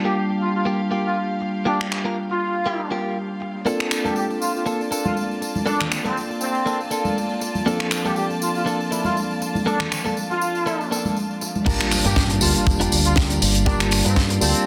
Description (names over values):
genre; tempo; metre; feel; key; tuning
nu-disco, nu disco; 120 BPM; 4/4; swing 55% on 16ths; G minor; A4 = 440 Hz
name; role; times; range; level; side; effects
tine electric piano; accompaniment; 0.0-14.7 s; F3 to A5; -28 LUFS; equal; sidechain pumping
dark studio string section; sustained chords; 0.0-14.7 s; G3 to A5; -33 LUFS; equal; sidechain pumping, low-pass filter
direct-recorded clean electric guitar; riff; 0.0-14.5 s; Bb3 to Bb4; -30 LUFS; equal; lush chorus, low-pass filter
dark trumpet section; melody; 0.1-14.7 s; C4 to G4; -29 LUFS; equal; dub echo
tight funk drum kit; drums; 1.8-14.6 s; crash cymbal, finger snaps, hi-hat, snare drum, tambourine; -25 LUFS; equal; soft clipping on snare
tambourine and congas; percussion; 3.7-11.6 s; none; -30 LUFS; equal; none
fingered electric bass with an envelope filter; bass; 11.7-14.5 s; F1 to G2; -24 LUFS; equal; none
kick drum; drums; 11.7-14.3 s; none; -24 LUFS; equal; none
impact; sound effects; 11.7-13.7 s; none; -33 LUFS; equal; none
room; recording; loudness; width
moderate digital room reverb, RT60 1.2 s, small room ambience; dense, heavily limited modern master; -22 LUFS; mono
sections
0.0-11.7 A section; 11.7-14.7 B section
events
drop 11.7-14.7; impact 11.7-13.7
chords
0.0 Gm7; 3.7 Bbmaj7; 11.7 Gm7